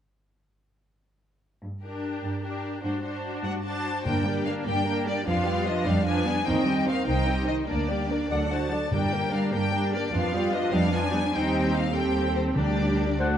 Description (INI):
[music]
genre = classical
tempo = 99 BPM (dotted quarters)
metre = 6/8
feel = straight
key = G minor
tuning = A4 = 442 Hz
[part]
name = warm chamber cello section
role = bass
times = 1.6-13.4 s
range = G2 to F4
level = -31 LUFS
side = right 1 dB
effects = none
[part]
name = rich symphonic violin section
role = melody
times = 1.8-13.2 s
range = Bb4 to A5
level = -32 LUFS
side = left 3 dB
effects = none
[part]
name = dark studio violin section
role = second line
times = 1.8-13.4 s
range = Eb4 to F#5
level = -33 LUFS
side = left 3 dB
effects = none
[part]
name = warm symphonic viola section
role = accompaniment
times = 1.9-13.4 s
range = Eb3 to F#4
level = -29 LUFS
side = equal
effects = none
[part]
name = rich studio double bass section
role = bass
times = 4.1-13.4 s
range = C2 to G2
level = -29 LUFS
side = right 2 dB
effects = none
[part]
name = timpani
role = percussion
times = 4.1-4.6, 8.9-9.5, 12.6-13.1 s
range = G2 to D3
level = -33 LUFS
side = left 1 dB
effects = none
[part]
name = dark clarinet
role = second line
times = 8.3-8.9, 13.2-13.3 s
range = C5 to D5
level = -32 LUFS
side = left 2 dB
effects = none
[part]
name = warm oboe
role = second line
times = 13.2-13.4 s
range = F#5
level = -28 LUFS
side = left 3 dB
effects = none
[sound]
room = moderate concert hall reverb, RT60 2.1 s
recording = dark, warm production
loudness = -24 LUFS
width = side -9 dB against mid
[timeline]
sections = 1.6-4.1 A section; 4.1-13.4 B section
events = none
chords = 1.6 Gm; 5.3 G7/F; 6.5 Cm/Eb; 7.1 Cm; 7.7 Gm/D; 8.3 D; 8.9 Gm; 10.1 G7/F; 11.3 Cm/Eb; 12.6 Gm/D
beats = | 1.63 2.23 | 2.83 3.44 | 4.06 4.67 | 5.27 5.87 | 6.47 7.07 | 7.69 8.31 | 8.92 9.53 | 10.14 10.73 | 11.34 11.94 | 12.56 13.19